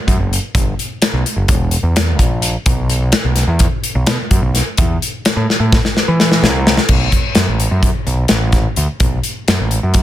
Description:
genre	math rock and midwest emo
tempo	255 BPM (eighths)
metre	9/8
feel	straight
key	unclear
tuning	A4 = 443 Hz
part	growling picked electric bass	bass	0.1-10.0 s	E1 to E3	-15 LUFS	equal	overdrive
part	modern studio drum kit	drums	0.1-10.0 s	crash cymbal, hi-hat, kick drum, snare drum	-14 LUFS	equal	none
room	light reverb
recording	dense, heavily limited modern master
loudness	-12 LUFS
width	side -13 dB against mid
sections	0.0-6.9 A section; 6.9-10.0 B section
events	drum fill 5.5-6.9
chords	none

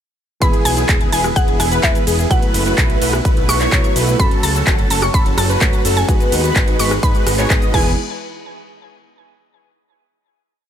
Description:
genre	EDM, festival progressive house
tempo	127 BPM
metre	4/4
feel	straight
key	E major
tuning	A4 = 441 Hz
part	mallet-like synth pluck	melody	0.4-8.0 s	E5 to C#6	-23 LUFS	equal	chorus, ping-pong delay
part	dark grand piano	accompaniment	0.4-8.0 s	E3 to G#4	-26 LUFS	right 1 dB	sidechain pumping, ping-pong delay
part	lush unison pad	sustained chords	1.0-8.0 s	E3 to B4	-27 LUFS	equal	chorus, phaser, sidechain pumping
part	wide unison lead	arpeggios	0.4-7.9 s	G#4 to D#5	-23 LUFS	equal	ensemble chorus, sidechain pumping, ping-pong delay
part	big supersaw lead	riff	0.4-7.9 s	G#3 to D#5	-24 LUFS	right 1 dB	sidechain pumping, ping-pong delay
part	fat analog bass	bass	0.4-8.0 s	E1 to G#2	-20 LUFS	equal	tube saturation, sidechain pumping
part	electronic kick drum	drums	0.4-7.8 s	none	-16 LUFS	equal	none
part	pop drum kit	drums	0.4-7.8 s	crash cymbal, handclaps, hi-hat, ride cymbal, rim click, shaker	-21 LUFS	equal	overdrive
room	little or no reverb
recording	none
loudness	-13 LUFS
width	side -9 dB against mid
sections	0.4-8.0 drop; 8.0-9.9 final hit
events	drop 0.4-8.0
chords	0.4 E; 2.3 B7sus4; 4.2 F#m; 6.1 G#m7; 7.7 E; 8.0 N.C.

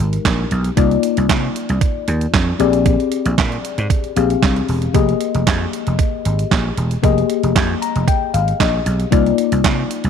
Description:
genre	early-eighties boogie funk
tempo	115 BPM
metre	4/4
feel	straight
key	F dorian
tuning	A4 = 441 Hz
part	mellow FM electric piano	accompaniment	0.0-10.1 s	Ab3 to Bb5	-19 LUFS	left 11 dB	chorus
part	vintage slap bass	bass	0.0-10.1 s	E1 to C3	-18 LUFS	right 1 dB	none
part	detuned 8-bit digital drum machine	drums	0.1-10.1 s	handclaps, hi-hat, kick drum, snare drum	-18 LUFS	right 4 dB	none
room	light reverb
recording	1960s-style stereo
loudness	-14 LUFS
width	side -7 dB against mid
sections	0.0-10.1 A section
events	FM electric piano fill 7.6-9.1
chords	0.0 Fm11 (rootless); 0.8 Cm11; 2.6 Bb13; 4.9 Fm11; 9.1 Cm11

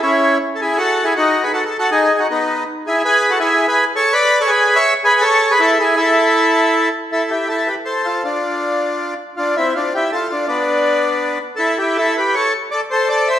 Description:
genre	musette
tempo	161 BPM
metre	3/4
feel	straight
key	A major, A minor from 7.1 s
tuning	A4 = 440 Hz
part	accordion	solo	0.0-13.4 s	B3 to E5	-13 LUFS	equal	none
room	wet recital hall reverb, RT60 1.6 s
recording	recorded in a church or concert hall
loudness	-13 LUFS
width	side -10 dB against mid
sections	0.0-7.1 A section; 7.1-13.4 B section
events	none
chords	0.4 B; 2.6 E; 4.9 Amaj7; 7.1 A5; 8.2 N.C.; 9.4 Fmaj13/C; 10.5 N.C.; 11.6 A5; 12.7 D5

